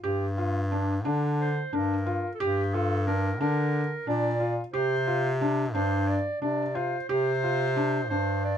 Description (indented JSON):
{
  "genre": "contemporary instrumental, chamber music in an uneven meter",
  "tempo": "178 BPM (eighths)",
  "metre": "7/8",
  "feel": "straight",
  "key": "G minor",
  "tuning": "A4 = 442 Hz",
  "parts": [
    { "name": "felt-muted upright piano", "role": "arpeggios", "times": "0.0-8.5 s", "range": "D4 to G4", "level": "-29 LUFS", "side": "equal", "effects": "none" },
    { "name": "clear bass clarinet", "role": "bass", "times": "0.0-8.6 s", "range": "G2 to D3", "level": "-28 LUFS", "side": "equal", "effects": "none" },
    { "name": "warm clarinet", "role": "melody", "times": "1.4-8.6 s", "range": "G4 to D5", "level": "-31 LUFS", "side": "right 2 dB", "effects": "none" }
  ],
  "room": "light reverb",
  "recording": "close, detailed microphones",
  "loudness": "-25 LUFS",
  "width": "side -9 dB against mid",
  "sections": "0.0-8.6 A section",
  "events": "none",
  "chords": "0.0 Gm7; 4.7 Csus2"
}